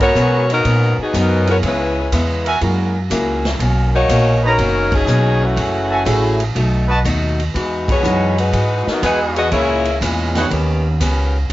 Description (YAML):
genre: jazz, big band swing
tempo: 122 BPM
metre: 4/4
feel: swing 68% on 8ths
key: unclear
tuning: A4 = 440 Hz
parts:
  - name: clear saxophone section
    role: melody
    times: 0.0-10.0 s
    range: E3 to D#5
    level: -17 LUFS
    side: left 2 dB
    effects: cassette tape, plate reverb
  - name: clear grand piano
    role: accompaniment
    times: 0.0-2.9, 6.1-11.0 s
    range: D#3 to C#5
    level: -24 LUFS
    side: right 3 dB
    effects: cassette tape, plate reverb
  - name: picked acoustic archtop guitar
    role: accompaniment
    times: 0.0-11.5 s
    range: G#2 to G#4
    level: -22 LUFS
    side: left 2 dB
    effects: cassette tape, plate reverb
  - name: clear trumpet section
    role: stabs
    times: 0.0-10.5 s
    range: B3 to A#5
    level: -21 LUFS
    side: right 2 dB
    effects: cassette tape, plate reverb
  - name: upright bass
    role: bass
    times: 0.0-11.5 s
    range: F#1 to B2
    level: -18 LUFS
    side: equal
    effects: none
  - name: swinging big-band drum kit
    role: drums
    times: 0.0-11.5 s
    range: hi-hat, kick drum, ride cymbal, snare drum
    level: -24 LUFS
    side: right 1 dB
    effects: cassette tape
room: light reverb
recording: home recording on cassette, nothing above 7.7 kHz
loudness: -14 LUFS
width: side -16 dB against mid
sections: 0.0-11.5 A section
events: band accent 0.0, 4.8, 7.8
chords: 0.0 G#m11; 1.6 C#m7; 2.6 F#9; 3.6 Bmaj9; 5.6 F#m9; 6.6 B7; 7.5 Emaj9; 9.5 A#m7b5; 10.5 D#aug7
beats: 0.16 0.65 1.14 | 1.64 2.13 2.62 3.11 | 3.60 4.10 4.59 5.08 | 5.57 6.07 6.56 7.05 | 7.55 8.04 8.53 9.03 | 9.52 10.02 10.51 11.01 | 11.50